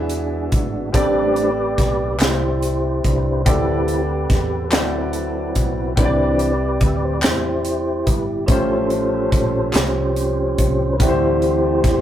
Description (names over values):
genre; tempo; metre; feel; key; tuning
slow gospel; 48 BPM (dotted quarters); 6/8; straight; unclear; A4 = 441 Hz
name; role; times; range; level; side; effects
warm upright piano; accompaniment; 0.0-12.0 s; A2 to E5; -26 LUFS; left 2 dB; none
percussive tonewheel organ; sustained chords; 0.0-12.0 s; E3 to E5; -20 LUFS; right 1 dB; slow rotary speaker, chorus vibrato
hollow-body short-scale fingered electric bass; bass; 0.0-12.0 s; G1 to E2; -24 LUFS; equal; none
crisp fusion drum kit; drums; 0.1-12.0 s; hi-hat, kick drum, snare drum; -20 LUFS; equal; none
group handclap; percussion; 2.2-10.1 s; none; -26 LUFS; left 1 dB; none
room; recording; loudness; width
moderate small room reverb, RT60 0.5 s; rough rehearsal-room recording; -16 LUFS; side -11 dB against mid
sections
0.0-12.0 A section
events
tonewheel organ solo 0.0-12.0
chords
0.0 E7; 0.9 Am11; 3.5 D7sus4; 4.7 D13; 6.0 Cmaj9; 8.5 A7alt; 11.0 D9sus4